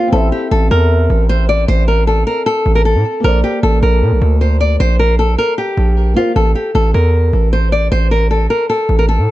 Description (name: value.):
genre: hip hop, trap.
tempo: 154 BPM.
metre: 4/4.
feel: half-time.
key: A phrygian.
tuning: A4 = 440 Hz.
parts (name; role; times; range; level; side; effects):
nylon-string guitar; melody; 0.0-9.3 s; F4 to D5; -15 LUFS; left 1 dB; low-pass filter, digital delay.
felt-muted upright piano; accompaniment; 0.0-6.4 s; Bb3 to F5; -23 LUFS; left 2 dB; low-pass filter.
distorted 808-style bass; bass; 0.1-9.3 s; A1 to Bb2; -12 LUFS; equal; distortion.
room: small room ambience.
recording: dark, warm production.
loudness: -11 LUFS.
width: side -16 dB against mid.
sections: 0.0-6.4 A section; 6.4-9.3 B section.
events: none.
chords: 0.1 Am; 3.2 Bbadd9; 6.4 A5.